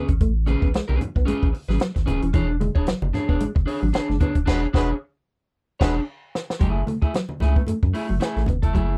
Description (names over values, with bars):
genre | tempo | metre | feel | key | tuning
funk | 112 BPM | 4/4 | swing 56% on 16ths | F# minor | A4 = 440 Hz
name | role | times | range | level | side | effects
electric guitar at the edge of break-up | accompaniment | 0.0-8.9 s | A3 to C#5 | -29 LUFS | equal | none
mellow electric guitar | riff | 0.0-8.8 s | E3 to B3 | -30 LUFS | equal | none
saturated sub bass | bass | 0.1-9.0 s | D1 to F#2 | -26 LUFS | equal | none
compact cocktail drum kit | drums | 0.1-8.9 s | crash cymbal, hi-hat, kick drum, snare drum | -24 LUFS | equal | none
congas | percussion | 0.5-8.9 s | none | -34 LUFS | equal | none
clear horn section | second line | 4.5-6.0 s | G#3 to B4 | -30 LUFS | equal | none
room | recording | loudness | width
little or no reverb | dry, close 1970s-style studio recording | -22 LUFS | mono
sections
0.0-6.6 A section; 6.6-9.0 B section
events
band accent 4.5-6.6; drum fill 6.1-6.6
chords
0.0 Amaj9; 2.3 E13; 6.6 F#m9